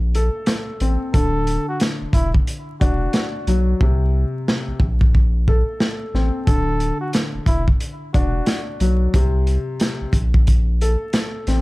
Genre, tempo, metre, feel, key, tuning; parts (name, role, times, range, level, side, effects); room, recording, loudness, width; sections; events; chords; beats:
hip hop, boom-bap hip-hop; 90 BPM; 4/4; swing 61% on 16ths; A4 = 441 Hz
saturated sub bass; bass; 0.0-11.6 s; D1 to C2; -19 LUFS; equal
crunchy breakbeat drum kit; drums; 0.1-11.6 s; hi-hat, kick drum, snare drum; -18 LUFS; equal
dark concert grand piano; accompaniment; 0.2-11.6 s; C3 to A4; -25 LUFS; left 2 dB; cassette tape
trumpet with bucket mute; melody; 1.1-8.6 s; E4 to A4; -27 LUFS; right 1 dB; digital delay
little or no reverb; dark, warm production, vinyl crackle; -17 LUFS; side -21 dB against mid
0.0-11.6 A section
hi-hats muted 3.8-6.5
0.0 Bbsus2; 1.1 Dadd9; 3.8 Bbsus2; 6.5 Dadd9; 9.1 Bbsus2
0.47 | 1.14 1.80 2.47 3.14 | 3.81 4.47 5.14 5.80 | 6.47 7.14 7.80 8.47 | 9.14 9.80 10.47 11.14